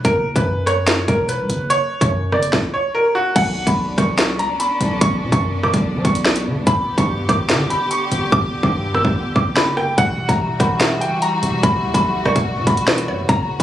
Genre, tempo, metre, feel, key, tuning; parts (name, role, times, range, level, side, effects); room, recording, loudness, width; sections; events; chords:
hip hop, drill; 145 BPM; 4/4; half-time; B harmonic minor; A4 = 440 Hz
bright upright piano; melody; 0.0-13.6 s; F#4 to E6; -20 LUFS; equal; digital delay
distorted 808-style bass; bass; 0.0-13.6 s; E1 to F#3; -23 LUFS; equal; distortion
drill drum kit; drums; 0.0-13.6 s; crash cymbal, hi-hat, kick drum, rim click, snare drum; -18 LUFS; equal
dark studio string section; sustained chords; 3.4-13.6 s; C#3 to G4; -24 LUFS; left 1 dB
mallet-like synth pluck; second line; 10.6-13.3 s; B4 to F#5; -27 LUFS; right 1 dB; chorus, digital delay
light reverb, digital ambience; recorded on a phone in the room, club reverb; -15 LUFS; side -12 dB against mid
0.0-3.4 A section; 3.4-13.6 B section
hi-hats muted 8.3-10.0
0.0 F#5; 3.4 Bmadd9; 6.7 G; 10.0 Emadd9